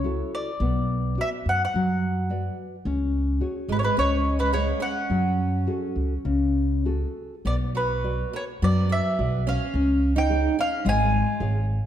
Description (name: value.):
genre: fado-style ballad.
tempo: 106 BPM.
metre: 4/4.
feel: rubato.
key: F# minor.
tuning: A4 = 440 Hz.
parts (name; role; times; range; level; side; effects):
mandolin; melody; 0.0-11.7 s; B4 to G#5; -27 LUFS; equal; none.
nylon-string guitar; accompaniment; 0.0-11.9 s; C#3 to E#5; -28 LUFS; left 2 dB; none.
upright bass; bass; 0.0-11.8 s; G#1 to F#2; -25 LUFS; equal; none.
picked twelve-string acoustic guitar; second line; 3.7-11.7 s; F#3 to E#4; -30 LUFS; right 7 dB; none.
room: moderate scoring stage reverb, RT60 1.5 s.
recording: dark, warm production.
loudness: -22 LUFS.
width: side -10 dB against mid.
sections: 0.0-7.5 A section; 7.5-11.9 B section.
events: none.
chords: 0.0 F#m7; 0.6 Bm; 2.9 C#sus4; 4.0 C#; 5.1 F#madd9; 7.5 Bm; 9.7 C#.